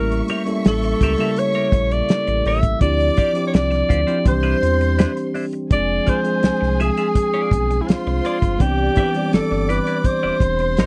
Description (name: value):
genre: lush 1970s-style soul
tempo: 83 BPM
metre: 4/4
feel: straight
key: unclear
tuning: A4 = 440 Hz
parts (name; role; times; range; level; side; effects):
- clear alto saxophone; melody; 0.0-10.9 s; E4 to E5; -24 LUFS; equal; none
- dark studio string section; second line; 0.0-10.9 s; Ab4 to D6; -32 LUFS; equal; none
- bell-like tine electric piano; accompaniment; 0.0-10.9 s; C#3 to A4; -25 LUFS; equal; phaser
- sub bass with octave; bass; 0.0-10.9 s; E1 to E2; -24 LUFS; equal; none
- warm soul drum kit; drums; 0.1-10.9 s; hi-hat, kick drum, snare drum; -19 LUFS; equal; none
- clean electric guitar; riff; 0.3-10.9 s; D4 to E5; -30 LUFS; equal; phaser
room: light reverb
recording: dry, close 1970s-style studio recording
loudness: -19 LUFS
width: mono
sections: 0.0-5.7 A section; 5.7-10.9 B section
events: none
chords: 0.0 A7b9; 2.8 Dm11; 4.3 Cmaj9; 5.7 Fm6; 8.6 Cmaj9